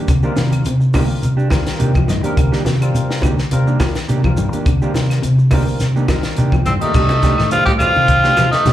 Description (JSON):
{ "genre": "afrobeat", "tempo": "105 BPM", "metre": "4/4", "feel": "swing 53% on 16ths", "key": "C dorian", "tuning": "A4 = 440 Hz", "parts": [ { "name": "electric guitar at the edge of break-up", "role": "arpeggios", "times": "0.0-8.7 s", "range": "C3 to G3", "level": "-22 LUFS", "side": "left 4 dB", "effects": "spring reverb, slapback echo" }, { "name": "mellow electric guitar", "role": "stabs", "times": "0.0-8.7 s", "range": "Eb3 to G4", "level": "-24 LUFS", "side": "right 6 dB", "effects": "slapback echo" }, { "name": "vintage muted fingered electric bass", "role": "bass", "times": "0.1-8.7 s", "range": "G2 to C3", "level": "-17 LUFS", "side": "equal", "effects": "none" }, { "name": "compact cocktail drum kit", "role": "drums", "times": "0.1-8.7 s", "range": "crash cymbal, hi-hat, kick drum, snare drum", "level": "-19 LUFS", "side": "equal", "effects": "none" }, { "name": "claves", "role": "percussion", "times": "0.1-8.5 s", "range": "none", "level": "-35 LUFS", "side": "right 1 dB", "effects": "slapback echo" }, { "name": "shekere", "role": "percussion", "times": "0.1-8.7 s", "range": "none", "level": "-27 LUFS", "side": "equal", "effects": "none" }, { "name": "barky tine electric piano", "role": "accompaniment", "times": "0.2-8.7 s", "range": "G3 to G5", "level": "-27 LUFS", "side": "left 2 dB", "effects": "lush chorus, slapback echo" }, { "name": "congas", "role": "percussion", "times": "0.4-8.7 s", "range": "none", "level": "-25 LUFS", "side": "right 1 dB", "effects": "none" }, { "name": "breathy tenor saxophone", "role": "melody", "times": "6.7-8.7 s", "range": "C4 to G4", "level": "-14 LUFS", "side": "equal", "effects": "slapback echo" }, { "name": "growling tenor saxophone", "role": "second line", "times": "6.7-8.7 s", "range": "G3 to Eb4", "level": "-24 LUFS", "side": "right 3 dB", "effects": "slapback echo, tape echo" } ], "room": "little or no reverb", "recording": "live gig heard through the venue's PA, club reverb", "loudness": "-13 LUFS", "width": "side -12 dB against mid", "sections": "0.0-6.9 A section; 6.9-8.7 B section", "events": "tine electric piano fill 1.5-2.4, 5.8-6.9", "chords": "0.0 Cm9; 6.9 Cm69", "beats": "| 0.08 0.65 1.23 1.80 | 2.37 2.94 3.52 4.09 | 4.66 5.23 5.80 6.38 | 6.95 7.52 8.09 8.66" }